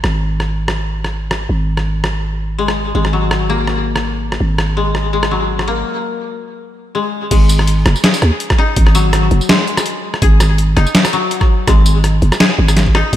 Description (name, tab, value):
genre	half-time drum and bass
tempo	165 BPM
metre	4/4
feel	swing 55% on 16ths, half-time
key	unclear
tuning	A4 = 440 Hz
part	growling 808-style bass	bass	0.0-13.2 s	F#1 to D#2	-15 LUFS	equal	none
part	boom bap sampler-style drum kit	drums	0.0-13.2 s	crash cymbal, hi-hat, rim click, snare drum, tambourine	-17 LUFS	equal	none
part	koto	arpeggios	2.6-13.2 s	F#3 to G#4	-19 LUFS	left 5 dB	vintage 12-bit sampler grit, diffuse ambient delay
part	electronic kick drum	drums	7.3-13.2 s	none	-12 LUFS	equal	none
room	light reverb, digital ambience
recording	none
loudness	-12 LUFS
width	side -12 dB against mid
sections	0.0-7.3 A section; 7.3-13.2 B section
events	break 5.9-7.3; drop 7.3-13.2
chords	0.0 G#sus2; 7.3 G#5